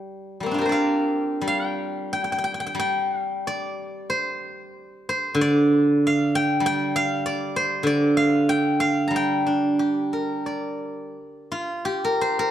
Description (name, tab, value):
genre	chinese traditional, Chinese solo plucked strings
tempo	80-99 BPM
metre	4/4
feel	rubato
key	G yu mode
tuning	A4 = 436 Hz
part	steel-string zither	solo	0.0-12.5 s	D3 to Bb5	-21 LUFS	equal	none
room	light reverb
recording	dark, warm production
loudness	-20 LUFS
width	side -11 dB against mid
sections	0.0-1.4 A section; 1.4-11.9 B section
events	none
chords	none